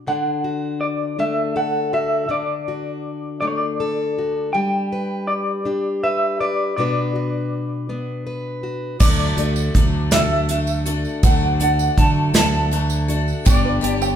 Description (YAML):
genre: indie folk with a building arrangement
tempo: 54 BPM (dotted quarters)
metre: 6/8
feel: straight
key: D major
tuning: A4 = 444 Hz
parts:
  - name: fingerpicked plugged-in steel-string acoustic guitar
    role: accompaniment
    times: 0.0-9.0 s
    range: B2 to B4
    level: -23 LUFS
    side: left 2 dB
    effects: none
  - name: electric guitar through a small old amp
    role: melody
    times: 0.1-14.2 s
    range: C#5 to A5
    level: -23 LUFS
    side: equal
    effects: tremolo
  - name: picked twelve-string acoustic guitar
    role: accompaniment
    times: 9.0-14.2 s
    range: G2 to G4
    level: -24 LUFS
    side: left 5 dB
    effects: none
  - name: fingered electric bass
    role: bass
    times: 9.0-14.2 s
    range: G1 to D3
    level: -21 LUFS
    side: right 1 dB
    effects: none
  - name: soft brush drum kit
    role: drums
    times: 9.0-14.0 s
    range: crash cymbal, hi-hat, kick drum, snare drum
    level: -18 LUFS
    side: equal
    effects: none
  - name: tambourine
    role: percussion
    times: 9.0-14.2 s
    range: none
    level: -34 LUFS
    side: right 8 dB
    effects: none
  - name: open-back banjo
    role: arpeggios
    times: 13.5-14.2 s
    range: G4 to G5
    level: -25 LUFS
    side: right 8 dB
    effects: none
room: moderate large studio reverb, RT60 1.2 s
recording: band playing live in one room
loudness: -18 LUFS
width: side -9 dB against mid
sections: 0.0-9.0 A section; 9.0-14.2 B section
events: none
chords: 0.1 D; 4.5 G; 6.8 Bm; 9.0 D; 13.5 G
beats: | 0.07 1.19 | 2.31 3.42 | 4.54 5.65 | 6.77 7.88 | 9.00 10.12 | 11.23 12.35 | 13.46